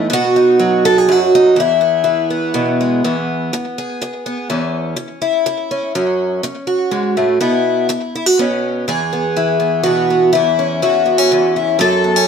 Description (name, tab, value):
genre	folk, solo fingerstyle acoustic guitar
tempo	123 BPM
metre	3/4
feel	straight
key	E major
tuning	A4 = 439 Hz
part	picked twelve-string acoustic guitar	solo	0.0-12.3 s	E2 to A4	-13 LUFS	equal	slapback echo
room	moderate studio reverb, RT60 0.9 s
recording	none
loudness	-13 LUFS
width	side -7 dB against mid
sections	0.0-3.0 A section; 3.0-8.9 B section; 8.9-12.3 C section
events	none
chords	0.1 B; 1.6 E; 4.5 C#m/E; 5.9 F#m; 7.4 Bsus4; 8.4 Bsus2; 8.9 E; 10.3 C#madd11/E